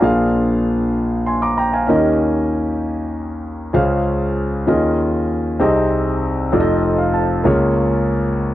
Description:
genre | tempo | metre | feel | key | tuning
gospel | 65 BPM (dotted quarters) | 6/8 | straight | unclear | A4 = 440 Hz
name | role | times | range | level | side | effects
dark concert grand piano | solo | 0.0-8.5 s | F1 to D6 | -15 LUFS | equal | none
room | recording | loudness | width
light reverb | dry, close 1970s-style studio recording | -15 LUFS | side -14 dB against mid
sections
0.0-8.5 A section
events
grand piano fill 6.5-7.5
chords
0.0 Bb7; 1.9 Eb7; 3.7 Dbmaj7; 4.7 Eb9sus4; 5.6 Abmaj7/C; 6.5 F7; 7.5 Bbm7/Db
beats
| 0.03 0.96 | 1.89 2.82 | 3.75 4.67 | 5.60 6.53 | 7.46 8.38

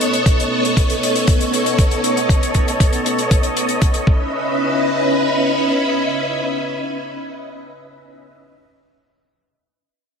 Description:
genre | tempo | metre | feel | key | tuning
nu-disco, nu disco | 118 BPM | 4/4 | straight | C# minor | A4 = 440 Hz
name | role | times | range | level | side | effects
string machine, full ensemble | sustained chords | 0.0-8.3 s | B3 to E5 | -18 LUFS | equal | ensemble chorus, sidechain pumping
hi-hat | drums | 0.0-4.0 s | none | -24 LUFS | left 4 dB | none
electronic kick drum | drums | 0.3-4.2 s | none | -15 LUFS | equal | none
room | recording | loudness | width
moderate echo chamber reverb, RT60 2.1 s | none | -15 LUFS | side -6 dB against mid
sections
0.0-4.3 A section; 4.3-8.4 B section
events
none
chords
0.0 B9; 4.1 C#m9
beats
| 0.26 0.77 1.27 1.78 | 2.29 2.80 3.31 3.82 | 4.33 4.83 5.34 5.85 | 6.36 6.87 7.38 7.88

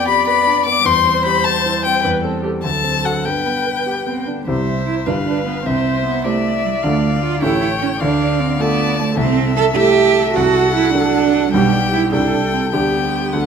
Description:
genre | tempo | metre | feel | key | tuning
quick classical-period movement for piano quartet | 101 BPM (dotted quarters) | 6/8 | straight | G major, C major from 4.5 s, G major from 9.2 s | A4 = 440 Hz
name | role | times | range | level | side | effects
rich violin | melody | 0.0-13.5 s | E5 to D6 | -19 LUFS | left 8 dB | none
warm cello | second line | 0.0-13.5 s | F#3 to A4 | -19 LUFS | right 8 dB | none
clear concert grand piano | accompaniment | 0.0-13.5 s | G1 to C5 | -20 LUFS | left 1 dB | none
warm viola | accompaniment | 0.0-13.5 s | G4 to D5 | -24 LUFS | right 4 dB | none
room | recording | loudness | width
wet recital hall reverb, RT60 1.4 s | none | -14 LUFS | side -6 dB against mid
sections
0.0-4.5 A section; 4.5-13.5 B section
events
none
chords
0.0 G7/F; 0.9 C/E; 2.0 Am7/E; 2.6 D7; 3.2 G; 4.5 C; 5.1 G7; 5.7 C; 6.8 Dm; 7.4 A7; 8.0 Dm; 9.2 Am/C; 10.4 D7/C; 11.5 G/B; 12.1 Am7/C; 12.7 G/D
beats
0.26 | 0.85 1.45 | 2.04 2.64 | 3.25 3.85 | 4.46 5.06 | 5.65 6.24 | 6.83 7.42 | 8.01 8.60 | 9.18 9.77 | 10.36 10.94 | 11.53 12.12 | 12.72 13.33

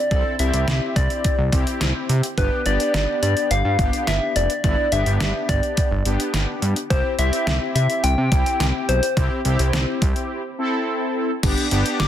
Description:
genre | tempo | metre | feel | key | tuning
synth-pop | 106 BPM | 4/4 | straight | C major | A4 = 442 Hz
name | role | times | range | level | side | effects
soft struck synth lead | melody | 0.0-12.1 s | B4 to D6 | -24 LUFS | left 2 dB | chorus, digital delay
analog synth brass | accompaniment | 0.1-12.1 s | B3 to A4 | -26 LUFS | left 1 dB | chorus
fat analog bass | bass | 0.1-12.1 s | F1 to C3 | -21 LUFS | equal | none
detuned 8-bit digital drum machine | drums | 0.1-12.1 s | crash cymbal, hi-hat, kick drum, snare drum | -23 LUFS | equal | overdrive
room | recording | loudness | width
light reverb, digital ambience | dense, heavily limited modern master | -18 LUFS | side -10 dB against mid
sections
0.0-11.4 A section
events
break 10.3-11.4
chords
0.0 Cadd9; 2.4 G; 6.9 C; 11.4 G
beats
| 0.11 0.68 1.24 1.81 | 2.38 2.94 3.51 4.08 | 4.64 5.21 5.77 6.34 | 6.91 7.47 8.04 8.60 | 9.17 9.73 10.30 10.87 | 11.43 12.00

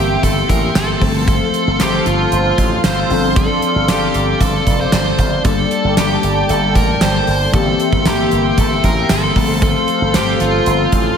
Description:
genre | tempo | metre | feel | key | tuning
1980s-style pop | 115 BPM | 4/4 | straight | unclear | A4 = 440 Hz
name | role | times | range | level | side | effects
dark smooth lead guitar | melody | 0.0-11.2 s | F4 to C5 | -19 LUFS | right 1 dB | overdrive, ping-pong delay
bell-like tine electric piano | accompaniment | 0.0-11.2 s | E3 to A4 | -20 LUFS | left 5 dB | ensemble chorus
chorused pulse-width pad | sustained chords | 0.0-11.2 s | Bb3 to C6 | -20 LUFS | right 1 dB | none
slap bass with an envelope filter | bass | 0.0-11.1 s | F1 to A1 | -19 LUFS | equal | none
gated 80s drum kit | drums | 0.2-11.0 s | hi-hat, kick drum, snare drum, tambourine | -18 LUFS | right 1 dB | none
room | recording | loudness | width
moderate lush hall reverb, RT60 2.5 s | dreamy mix soaked in reverb | -12 LUFS | side -7 dB against mid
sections
0.0-11.2 A section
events
none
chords
0.0 C7/G; 1.0 F/G; 3.1 Dm7/G; 5.4 Gmadd9; 7.5 C7/G; 9.4 F/G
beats
0.23 0.75 | 1.27 1.80 2.32 2.84 | 3.36 3.88 4.41 4.93 | 5.45 5.97 6.49 7.01 | 7.54 8.06 8.58 9.10 | 9.62 10.14 10.67

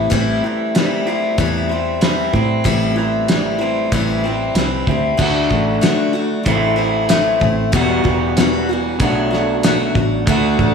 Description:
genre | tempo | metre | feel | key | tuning
folk rock and heartland rock | 94 BPM | 4/4 | straight | unclear | A4 = 440 Hz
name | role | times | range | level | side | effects
picked steel-string acoustic guitar | accompaniment | 0.0-10.7 s | E2 to F#4 | -19 LUFS | left 4 dB | slapback echo
electric guitar through a small old amp | riff | 0.0-10.7 s | E2 to F#4 | -20 LUFS | right 3 dB | slapback echo
fingered electric bass | bass | 0.0-10.7 s | E1 to A2 | -22 LUFS | equal | none
cloth-damped thuddy drum kit | drums | 0.1-10.7 s | crash cymbal, hi-hat, kick drum, snare drum | -20 LUFS | equal | none
tonewheel organ | sustained chords | 10.3-10.7 s | A3 to A4 | -26 LUFS | right 5 dB | slow rotary speaker, overdrive, chorus vibrato
room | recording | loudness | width
moderate lush hall reverb, RT60 2.2 s | big arena sound, studio ambience | -14 LUFS | side -6 dB against mid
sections
0.0-5.2 A section; 5.2-10.7 B section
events
none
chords
0.0 Am7; 5.2 D; 6.5 Am; 7.7 Emadd9; 9.0 Bm7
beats
| 0.12 0.75 1.38 2.02 | 2.65 3.28 3.92 4.55 | 5.19 5.83 6.46 7.10 | 7.73 8.37 9.01 9.64 | 10.28

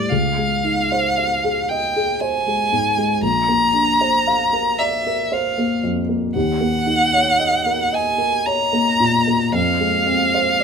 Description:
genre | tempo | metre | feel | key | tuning
classical, impressionist duo for violin and grand piano | 57 BPM | 3/4 | rubato | unclear | A4 = 443 Hz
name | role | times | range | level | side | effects
clear violin | melody | 0.0-10.6 s | D5 to A#5 | -18 LUFS | equal | none
dark baby grand piano | accompaniment | 0.0-10.6 s | Bb1 to E#5 | -20 LUFS | equal | none
room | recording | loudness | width
light reverb | minimal, uncompressed stereo recording | -16 LUFS | side -6 dB against mid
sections
0.0-10.6 A section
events
none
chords
0.1 C#maj9; 3.2 Bbadd9; 6.3 D#m7; 9.5 Fm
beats
| 0.10 1.17 2.21 | 3.21 4.26 5.32 | 6.35 7.40 8.47 | 9.55 10.61

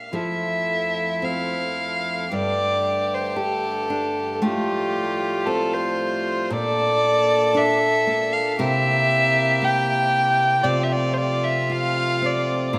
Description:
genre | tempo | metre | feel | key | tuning
celtic folk, Celtic slow air | 57 BPM | 4/4 | rubato | unclear | A4 = 439 Hz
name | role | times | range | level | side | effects
dark fiddle | melody | 0.0-12.8 s | G4 to G5 | -24 LUFS | equal | none
nylon-string guitar | accompaniment | 0.0-12.8 s | G2 to Bb4 | -30 LUFS | equal | none
rich fiddle | second line | 0.1-12.8 s | E4 to A4 | -30 LUFS | equal | none
hand-pumped harmonium | sustained chords | 0.1-12.8 s | F2 to A4 | -33 LUFS | equal | none
room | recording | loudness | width
moderate church reverb, RT60 2.4 s | none | -22 LUFS | mono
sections
0.1-12.8 A section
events
none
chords
0.1 Fmaj7; 2.3 Gsus2; 6.5 Bbmaj7; 8.6 C7; 10.6 F/C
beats
| 0.12 1.21 2.30 3.37 | 4.41 5.46 6.51 7.54 | 8.58 9.62 10.64 11.69 | 12.73

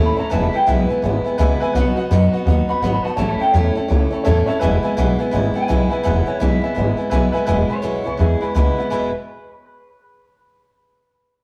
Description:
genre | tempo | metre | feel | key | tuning
rockabilly | 168 BPM | 4/4 | swing 63% on 8ths | E major | A4 = 440 Hz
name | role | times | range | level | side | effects
dark upright piano | accompaniment | 0.0-9.1 s | B4 to A5 | -26 LUFS | equal | none
picked steel-string acoustic guitar | accompaniment | 0.0-9.1 s | E2 to F#4 | -25 LUFS | equal | none
upright bass | bass | 0.0-9.1 s | E1 to F#2 | -21 LUFS | equal | none
electric guitar through a small old amp | melody | 0.1-9.1 s | G#4 to B5 | -26 LUFS | equal | analog delay
room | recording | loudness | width
wet stone room reverb, RT60 1.3 s | rough rehearsal-room recording | -18 LUFS | mono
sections
0.0-7.5 A section; 7.5-8.9 B section; 8.9-10.3 C section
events
none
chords
0.3 E; 1.7 B; 3.2 A; 4.6 E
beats
| 0.32 0.67 1.03 1.39 | 1.75 2.10 2.46 2.82 | 3.18 3.54 3.90 4.25 | 4.61 4.97 5.33 5.68 | 6.04 6.40 6.76 7.12 | 7.48 7.83 8.19 8.55 | 8.91

